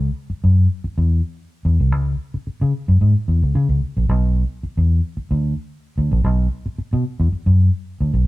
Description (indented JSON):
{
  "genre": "funk",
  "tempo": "111 BPM",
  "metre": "4/4",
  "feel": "straight",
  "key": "B dorian",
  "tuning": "A4 = 443 Hz",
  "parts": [
    { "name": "vintage muted fingered electric bass", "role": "solo", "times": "0.0-8.3 s", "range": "A#1 to C#3", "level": "-16 LUFS", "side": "equal", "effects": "none" }
  ],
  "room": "light reverb",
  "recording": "band playing live in one room",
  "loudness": "-16 LUFS",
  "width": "side -18 dB against mid",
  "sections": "0.0-4.1 A section; 4.1-8.3 B section",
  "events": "none",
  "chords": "none"
}